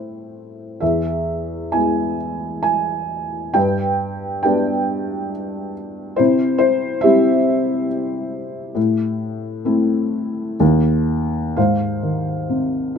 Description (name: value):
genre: classical, lyrical solo piano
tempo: 60-70 BPM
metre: 3/4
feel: rubato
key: unclear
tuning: A4 = 440 Hz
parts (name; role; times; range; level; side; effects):
- felt-muted upright piano; solo; 0.0-13.0 s; D#2 to G#5; -17 LUFS; left 1 dB; none
room: light reverb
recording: close, detailed microphones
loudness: -17 LUFS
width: side -7 dB against mid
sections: 0.0-11.6 A section; 11.6-13.0 B section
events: none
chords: 0.0 Am; 0.8 E; 3.5 G; 6.2 C; 8.8 Am; 10.6 N.C.; 11.6 Ab